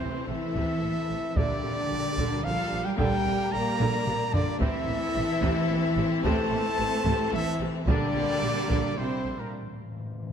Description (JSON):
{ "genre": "cinematic, epic orchestral film score", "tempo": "110 BPM", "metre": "3/4", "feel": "straight", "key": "unclear", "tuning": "A4 = 439 Hz", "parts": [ { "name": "warm symphonic violin section", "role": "melody", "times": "0.0-9.5 s", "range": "D4 to D5", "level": "-39 LUFS", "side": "left 5 dB", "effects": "none" }, { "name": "flute section", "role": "second line", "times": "0.0-9.5 s", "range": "Bb4 to Bb5", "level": "-37 LUFS", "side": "left 5 dB", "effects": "none" }, { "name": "warm symphonic violin section", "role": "second line", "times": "0.0-9.5 s", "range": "G3 to C4", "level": "-38 LUFS", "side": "left 4 dB", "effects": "none" }, { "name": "warm symphonic viola section", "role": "accompaniment", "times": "0.0-9.5 s", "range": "C3 to Bb3", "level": "-35 LUFS", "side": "right 1 dB", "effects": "none" }, { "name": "mellow French horn section", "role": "sustained chords", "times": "0.0-9.5 s", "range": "Bb3 to Bb4", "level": "-33 LUFS", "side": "left 7 dB", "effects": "none" }, { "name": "mellow trumpet", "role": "stabs", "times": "0.0-9.5 s", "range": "Bb4 to Bb5", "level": "-32 LUFS", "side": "right 1 dB", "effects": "none" }, { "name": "dark symphonic cello section", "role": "bass", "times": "0.0-9.5 s", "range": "Bb2 to Bb3", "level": "-32 LUFS", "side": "right 3 dB", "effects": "none" }, { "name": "warm symphonic double bass section", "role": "bass", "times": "0.0-9.3 s", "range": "A1 to Bb1", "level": "-33 LUFS", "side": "right 4 dB", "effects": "none" }, { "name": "taiko ensemble", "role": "drums", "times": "0.6-9.2 s", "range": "none", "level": "-31 LUFS", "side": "equal", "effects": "none" }, { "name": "clear trombone section", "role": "sustained chords", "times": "1.4-8.1 s", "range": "E3 to D4", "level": "-42 LUFS", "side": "right 4 dB", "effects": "none" }, { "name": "timpani", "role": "percussion", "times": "9.5-10.3 s", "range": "A2", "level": "-38 LUFS", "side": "left 2 dB", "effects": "none" } ], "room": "moderate concert hall reverb, RT60 2.5 s", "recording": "none", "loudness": "-24 LUFS", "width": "side -8 dB against mid", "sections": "0.0-10.3 A section", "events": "drum fill 3.8-4.6; break 9.5-10.3; timpani fill 9.5-10.3", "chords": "0.0 Am; 1.4 Gm/Bb; 4.6 Am; 7.9 Gm/Bb; 9.5 N.C." }